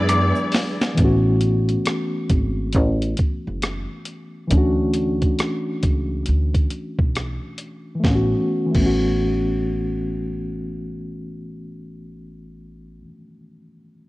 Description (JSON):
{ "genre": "R&B, neo-soul", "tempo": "68 BPM", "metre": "4/4", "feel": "swing 61% on 16ths", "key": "A major", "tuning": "A4 = 439 Hz", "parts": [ { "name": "mellow reed electric piano", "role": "accompaniment", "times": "0.0-14.1 s", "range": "E3 to E6", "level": "-23 LUFS", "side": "left 1 dB", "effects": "fast tremolo" }, { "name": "dark symphonic string section", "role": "sustained chords", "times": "0.0-1.0 s", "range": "E3 to D5", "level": "-26 LUFS", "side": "right 1 dB", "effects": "none" }, { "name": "upright bass", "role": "bass", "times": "0.0-13.0 s", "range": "F#1 to F#2", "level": "-22 LUFS", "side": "equal", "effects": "none" }, { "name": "boom bap sampler-style drum kit", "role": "drums", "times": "0.1-9.0 s", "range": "crash cymbal, hi-hat, kick drum, rim click, snare drum", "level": "-21 LUFS", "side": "equal", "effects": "none" }, { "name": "finger snaps and tube shaker", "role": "percussion", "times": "0.1-1.0 s", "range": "none", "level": "-34 LUFS", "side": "right 7 dB", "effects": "none" } ], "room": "light reverb", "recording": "worn, warbling old tape, cassette tape, warbly pitch drift", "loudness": "-18 LUFS", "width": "side -19 dB against mid", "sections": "1.0-8.0 A section; 8.0-11.6 B section", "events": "drum fill 0.1-1.0", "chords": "0.0 E7; 1.0 A69; 4.5 Dmaj7; 8.0 A69" }